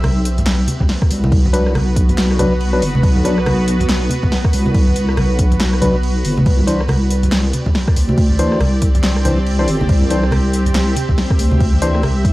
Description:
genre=deep dubstep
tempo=140 BPM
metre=4/4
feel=swing 60% on 16ths, half-time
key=B phrygian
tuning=A4 = 440 Hz
part: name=granular cloud pad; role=sustained chords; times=0.0-12.3 s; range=B3 to E5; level=-24 LUFS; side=right 1 dB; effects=built-in reverb
part: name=deep soft wobble bass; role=bass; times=0.0-12.3 s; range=F#1 to D2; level=-16 LUFS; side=equal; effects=chorus, transformer saturation
part: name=deep house drum kit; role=drums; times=0.0-12.3 s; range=crash cymbal, handclaps, hi-hat, rim click, snare drum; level=-23 LUFS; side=equal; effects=overdrive
part: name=congas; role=percussion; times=0.0-12.1 s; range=none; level=-21 LUFS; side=equal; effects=none
part: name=electronic kick drum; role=drums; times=0.8-12.3 s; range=none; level=-15 LUFS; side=equal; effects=overdrive
part: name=percussive organ stab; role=stabs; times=1.5-12.0 s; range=E3 to C5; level=-22 LUFS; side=left 2 dB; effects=chorus, dub echo
room=little or no reverb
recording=dry, gritty hardware recording, vinyl crackle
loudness=-13 LUFS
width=side -18 dB against mid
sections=0.0-12.3 A section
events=none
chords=0.0 Bm; 6.5 Cadd9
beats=0.03 0.46 0.89 | 1.32 1.75 2.18 2.61 | 3.03 3.46 3.89 4.32 | 4.75 5.18 5.61 6.03 | 6.46 6.89 7.32 7.75 | 8.18 8.61 9.03 9.46 | 9.89 10.32 10.75 11.18 | 11.61 12.03

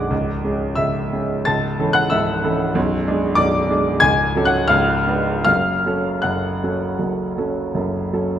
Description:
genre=classical, romantic character piece for solo piano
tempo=77-96 BPM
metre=4/4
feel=rubato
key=F# minor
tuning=A4 = 439 Hz
part: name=warm grand piano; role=solo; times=0.0-8.4 s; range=B0 to A6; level=-17 LUFS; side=equal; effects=none
room=moderate recital hall reverb, RT60 1.6 s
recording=close, detailed microphones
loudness=-17 LUFS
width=side -10 dB against mid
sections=0.0-8.4 A section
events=none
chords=0.1 C#m; 1.5 A/C#; 2.8 G#dim/B; 4.0 F#m/C#; 4.7 C#7b9; 5.5 F#m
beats=| 0.12 0.79 1.48 2.13 | 2.77 3.40 4.04 4.73 | 5.48 6.24 7.00 7.75

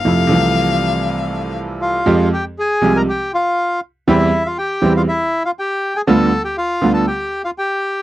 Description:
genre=tango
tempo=120 BPM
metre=4/4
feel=rubato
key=F harmonic minor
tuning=A4 = 440 Hz
part: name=rich violin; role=second line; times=0.0-1.6 s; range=F5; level=-20 LUFS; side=left 8 dB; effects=none
part: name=bright concert grand piano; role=accompaniment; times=0.0-7.0 s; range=C2 to G4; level=-15 LUFS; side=right 2 dB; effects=none
part: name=bandoneon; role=stabs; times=0.1-7.0 s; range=E2 to F4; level=-27 LUFS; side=right 3 dB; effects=none
part: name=bandoneon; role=melody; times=1.8-8.0 s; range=E4 to Bb5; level=-18 LUFS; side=left 1 dB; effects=none
room=light reverb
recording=dry, close 1970s-style studio recording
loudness=-14 LUFS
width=side -15 dB against mid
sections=0.0-2.1 A section; 2.1-8.0 B section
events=violin solo 0.0-2.1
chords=0.1 Fmaj7; 2.1 Fmadd9; 4.1 C/E; 6.1 G7/D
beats=| 0.06 0.56 1.06 1.56 | 2.07 2.57 3.08 3.58 | 4.08 4.58 5.08 5.58 | 6.08 6.57 7.07 7.57

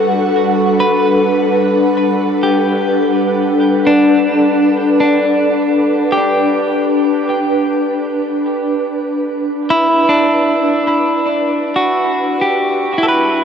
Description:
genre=ambient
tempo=77 BPM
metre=3/4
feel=straight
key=G major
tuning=A4 = 440 Hz
part: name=ethereal airy pad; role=sustained chords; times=0.0-13.4 s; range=G3 to F#5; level=-14 LUFS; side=left 1 dB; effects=ensemble chorus, built-in reverb, shimmer reverb
part: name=clean electric guitar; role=arpeggios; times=0.0-13.4 s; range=D4 to B4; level=-15 LUFS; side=equal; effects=tape echo, shimmer reverb
room=wet huge ambient reverb, RT60 7.6 s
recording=dark, warm production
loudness=-12 LUFS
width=side -7 dB against mid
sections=0.0-3.6 A section; 3.6-13.4 B section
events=none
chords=0.0 Gmaj9; 3.6 G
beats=0.49 | 1.27 2.05 2.83 | 3.61 4.39 5.17 | 5.95 6.73 7.51 | 8.29 9.07 9.85 | 10.62 11.40 12.18 | 12.96

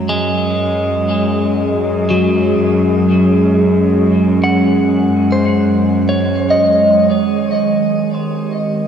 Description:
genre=ambient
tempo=free time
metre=none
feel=none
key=unclear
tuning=A4 = 439 Hz
part: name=warbly tape-like pad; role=sustained chords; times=0.0-8.9 s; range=Eb3 to Ab4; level=-14 LUFS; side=right 1 dB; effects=chorus, built-in reverb, shimmer reverb
part: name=clean electric guitar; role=arpeggios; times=0.0-8.9 s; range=Gb3 to Gb5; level=-17 LUFS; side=left 1 dB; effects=phaser, diffuse ambient delay, shimmer reverb
part: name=bright chamber cello section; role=bass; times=0.0-7.1 s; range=Gb2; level=-20 LUFS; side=equal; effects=none
room=wet lush hall reverb, RT60 3.1 s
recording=dark, warm production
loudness=-12 LUFS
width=side -8 dB against mid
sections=0.0-7.1 A section; 7.1-8.9 B section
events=none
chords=0.0 Gbsus2; 7.1 Abmaj7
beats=free time

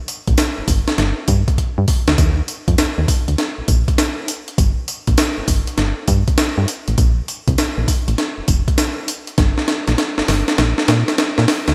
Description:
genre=R&B, new jack swing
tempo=100 BPM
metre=4/4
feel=swing 66% on 16ths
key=Bb major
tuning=A4 = 439 Hz
part: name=breakbeat sampler-style drum kit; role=drums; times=0.1-11.7 s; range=hi-hat, kick drum, snare drum, tambourine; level=-19 LUFS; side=equal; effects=gated reverb
part: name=solid FM bass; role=bass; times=0.3-11.7 s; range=F1 to Bb2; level=-20 LUFS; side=equal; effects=none
room=light reverb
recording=bright 1980s-style digital production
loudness=-18 LUFS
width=mono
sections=0.0-11.7 A section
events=drum fill 1.6-2.2, 9.4-11.7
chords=none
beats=0.38 0.98 1.58 | 2.18 2.78 3.38 3.98 | 4.58 5.18 5.78 6.38 | 6.98 7.58 8.18 8.78 | 9.38 9.98 10.58 11.18

